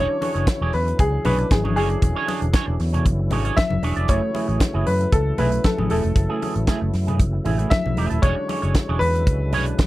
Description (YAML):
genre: disco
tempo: 116 BPM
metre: 4/4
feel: straight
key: unclear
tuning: A4 = 440 Hz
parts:
  - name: warm baby grand piano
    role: melody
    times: 0.0-9.9 s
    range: G#4 to E5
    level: -25 LUFS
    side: left 1 dB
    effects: none
  - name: electric guitar with an envelope filter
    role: accompaniment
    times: 0.0-9.8 s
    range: A3 to D5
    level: -27 LUFS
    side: right 6 dB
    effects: analog chorus
  - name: overdriven tonewheel organ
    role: sustained chords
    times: 0.0-9.9 s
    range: C#3 to E4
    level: -30 LUFS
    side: left 2 dB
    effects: chorus vibrato, slow rotary speaker
  - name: fingered electric bass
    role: bass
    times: 0.0-9.7 s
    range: D#1 to F#2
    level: -22 LUFS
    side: equal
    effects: none
  - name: tight funk drum kit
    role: drums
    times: 0.2-9.9 s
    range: hi-hat, kick drum, snare drum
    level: -20 LUFS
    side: equal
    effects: none
  - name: congas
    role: percussion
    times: 0.2-9.9 s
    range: none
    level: -29 LUFS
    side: left 3 dB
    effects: none
room: little or no reverb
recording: dry, close 1970s-style studio recording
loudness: -18 LUFS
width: side -17 dB against mid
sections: 0.0-9.9 A section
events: none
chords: 0.0 E13; 4.1 F#m9; 8.2 E13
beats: 0.47 0.99 1.50 | 2.02 2.54 3.06 3.57 | 4.09 4.61 5.12 5.64 | 6.16 6.67 7.19 7.71 | 8.23 8.75 9.27 9.79